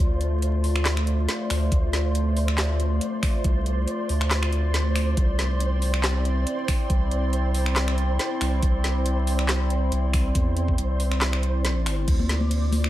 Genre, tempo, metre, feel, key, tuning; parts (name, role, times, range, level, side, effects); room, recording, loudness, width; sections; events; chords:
deep dubstep; 139 BPM; 4/4; swing 54% on 16ths, half-time; D minor; A4 = 440 Hz
dark analog pad; sustained chords; 0.0-12.9 s; A3 to D5; -30 LUFS; equal; chorus, phaser
saturated sub bass; bass; 0.0-12.9 s; C2 to E2; -23 LUFS; equal
flickering grainy texture; texture; 0.0-12.9 s; C5 to D5; -33 LUFS; right 2 dB; built-in reverb
garage drum kit; drums; 0.2-12.9 s; crash cymbal, finger snaps, handclaps, hi-hat, snare drum; -29 LUFS; equal
electronic kick drum; drums; 1.7-12.2 s; -23 LUFS; equal
congas; percussion; 12.2-12.8 s; -28 LUFS; left 4 dB
little or no reverb; vinyl crackle; -21 LUFS; side -14 dB against mid
0.0-12.9 A section
0.0 Dm; 5.2 Cadd9; 12.1 Dm